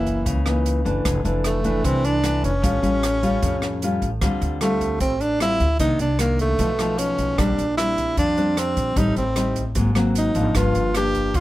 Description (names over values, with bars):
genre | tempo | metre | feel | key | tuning
bossa nova | 152 BPM | 4/4 | straight | unclear | A4 = 442 Hz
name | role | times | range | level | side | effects
breathy tenor saxophone | melody | 0.0-11.4 s | A3 to G4 | -22 LUFS | right 1 dB | plate reverb
nylon-string guitar | accompaniment | 0.0-11.4 s | F2 to E#4 | -24 LUFS | left 2 dB | none
upright bass | bass | 0.0-11.4 s | F1 to E#2 | -24 LUFS | equal | none
open jazz drum kit | drums | 0.1-11.4 s | hi-hat, kick drum, rim click | -28 LUFS | right 1 dB | none
room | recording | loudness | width
light reverb | none | -18 LUFS | side -16 dB against mid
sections
0.0-11.4 A section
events
none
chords
0.0 Gb6; 1.0 F6; 2.6 Aaug7; 4.2 Dm11; 5.8 Cm9; 6.6 B7#11; 7.4 Bb69; 9.0 Am7b5; 9.8 Ab9; 10.5 Gm7